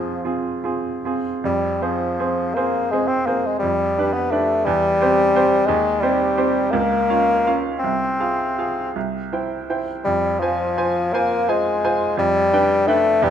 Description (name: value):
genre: classical, romantic duo for bassoon and grand piano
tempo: 49-60 BPM (dotted quarters)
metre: 6/8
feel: rubato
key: F minor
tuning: A4 = 440 Hz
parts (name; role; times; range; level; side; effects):
- clear bassoon; melody; 0.0-13.3 s; F3 to C4; -19 LUFS; left 2 dB; none
- bright baby grand piano; accompaniment; 0.0-13.3 s; C2 to Ab5; -22 LUFS; right 4 dB; none
room: light reverb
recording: close, detailed microphones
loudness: -17 LUFS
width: side -9 dB against mid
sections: 0.0-1.4 A section; 1.4-13.3 A section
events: none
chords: 0.0 Fm; 3.6 G7/F; 4.6 C/E; 5.7 Cm/Eb; 6.7 Bbm/Db; 7.8 Fm/C; 9.0 C; 10.1 Fm; 12.2 G7/F